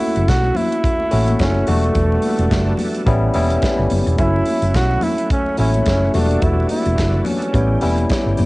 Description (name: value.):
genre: disco.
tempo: 107 BPM.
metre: 4/4.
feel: swing 56% on 16ths.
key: unclear.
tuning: A4 = 440 Hz.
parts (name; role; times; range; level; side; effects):
breathy flugelhorn; melody; 0.0-8.3 s; A3 to F#4; -22 LUFS; right 2 dB; cassette tape.
barky tine electric piano; accompaniment; 0.0-8.5 s; F#3 to F#4; -20 LUFS; left 1 dB; lush chorus, cassette tape.
overdriven tonewheel organ; sustained chords; 0.0-8.5 s; E3 to A4; -29 LUFS; right 1 dB; chorus vibrato, slow rotary speaker, cassette tape.
congas; percussion; 0.0-8.5 s; none; -26 LUFS; left 3 dB; none.
hollow-body short-scale fingered electric bass; bass; 0.2-8.5 s; E1 to B1; -18 LUFS; equal; none.
modern studio drum kit; drums; 0.2-8.5 s; hi-hat, kick drum, snare drum; -22 LUFS; equal; none.
room: little or no reverb.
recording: home recording on cassette, nothing above 10.4 kHz.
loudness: -15 LUFS.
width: side -21 dB against mid.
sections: 0.0-8.5 A section.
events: none.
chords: 0.0 F#m7; 1.7 Em11; 3.1 A7; 4.2 F#m7; 6.1 Em11; 7.5 A7.